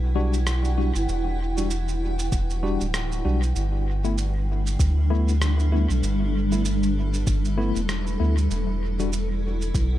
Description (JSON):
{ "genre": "ambient dub", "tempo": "97 BPM", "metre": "4/4", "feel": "swing 58% on 16ths", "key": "E minor", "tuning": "A4 = 442 Hz", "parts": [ { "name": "granular cloud pad", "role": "sustained chords", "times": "0.0-10.0 s", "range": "G3 to G5", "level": "-29 LUFS", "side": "equal", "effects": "built-in reverb" }, { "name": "soft dub sub bass", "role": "bass", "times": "0.0-10.0 s", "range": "D1 to D2", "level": "-23 LUFS", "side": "equal", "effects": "none" }, { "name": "tine electric piano", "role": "stabs", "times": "0.2-9.1 s", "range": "G3 to F#4", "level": "-31 LUFS", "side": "left 3 dB", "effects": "overdrive, medium stereo tremolo, dub echo" }, { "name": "electronic cabasa and rim click", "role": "drums", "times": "0.3-9.9 s", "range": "none", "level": "-33 LUFS", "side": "right 2 dB", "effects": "dub echo" }, { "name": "electronic kick drum", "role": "drums", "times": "2.3-9.9 s", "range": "none", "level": "-24 LUFS", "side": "equal", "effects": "none" } ], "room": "little or no reverb", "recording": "none", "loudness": "-21 LUFS", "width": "side -13 dB against mid", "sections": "0.0-10.0 A section", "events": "none", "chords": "0.0 Em9; 3.6 G69", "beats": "0.47 | 1.08 1.70 2.32 2.94 | 3.56 4.18 4.80 5.42 | 6.03 6.65 7.27 7.89 | 8.51 9.13 9.74" }